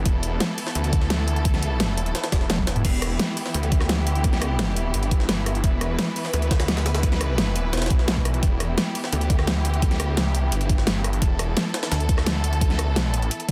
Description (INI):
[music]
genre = dark technical drum and bass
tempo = 172 BPM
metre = 4/4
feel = straight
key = E minor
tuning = A4 = 440 Hz
[part]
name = clear studio string section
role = sustained chords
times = 0.0-13.5 s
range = E3 to B4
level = -32 LUFS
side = equal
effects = sidechain pumping
[part]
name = snarling distorted saw bass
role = bass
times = 0.0-13.5 s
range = E1 to D2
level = -26 LUFS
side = equal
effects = distortion, tube saturation
[part]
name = dubstep drum kit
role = drums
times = 0.1-13.5 s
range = crash cymbal, hi-hat, rim click, snare drum, toms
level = -29 LUFS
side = equal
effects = overdrive
[part]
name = electronic kick drum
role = drums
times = 0.1-13.5 s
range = none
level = -24 LUFS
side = equal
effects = overdrive
[part]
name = jungle sampler-style drum kit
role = drums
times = 0.1-13.5 s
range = hi-hat, snare drum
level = -34 LUFS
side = equal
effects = overdrive, high-pass filter on hats, high-pass filter on snare
[sound]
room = light reverb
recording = dense, heavily limited modern master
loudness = -23 LUFS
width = mono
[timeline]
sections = 0.0-13.5 A section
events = drum fill 2.5-2.8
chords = 0.0 Em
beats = | 0.06 0.41 0.75 1.10 | 1.45 1.80 2.15 2.50 | 2.85 3.20 3.54 3.89 | 4.24 4.59 4.94 5.29 | 5.64 5.99 6.33 6.68 | 7.03 7.38 7.73 8.08 | 8.43 8.78 9.13 9.47 | 9.82 10.17 10.52 10.87 | 11.22 11.57 11.92 12.27 | 12.61 12.96 13.31